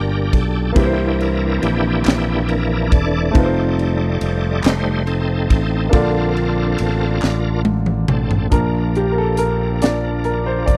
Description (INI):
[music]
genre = slow gospel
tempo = 46 BPM (dotted quarters)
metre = 6/8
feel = straight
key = Bb major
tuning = A4 = 440 Hz
[part]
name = clear baby grand piano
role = accompaniment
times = 0.0-10.8 s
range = Bb2 to D5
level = -24 LUFS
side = equal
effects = none
[part]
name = bright tonewheel organ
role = sustained chords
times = 0.0-10.8 s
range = E3 to D5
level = -25 LUFS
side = equal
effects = slow rotary speaker, chorus vibrato
[part]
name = fingered electric bass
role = bass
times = 0.0-10.8 s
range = E1 to C2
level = -22 LUFS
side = equal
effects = none
[part]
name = crisp fusion drum kit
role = drums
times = 0.3-10.8 s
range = hi-hat, kick drum, ride cymbal, snare drum, toms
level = -19 LUFS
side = equal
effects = none
[part]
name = group handclap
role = percussion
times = 2.0-7.6 s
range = none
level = -32 LUFS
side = equal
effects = none
[sound]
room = little or no reverb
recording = dry, close 1970s-style studio recording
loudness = -18 LUFS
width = mono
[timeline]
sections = 0.0-8.5 A section; 8.5-10.8 B section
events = tonewheel organ solo 0.0-8.5; drum fill 7.2-8.5; grand piano solo 8.5-10.8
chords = 0.0 Bb6; 0.8 C7; 3.3 F7; 5.9 Bbmaj7; 8.5 Bb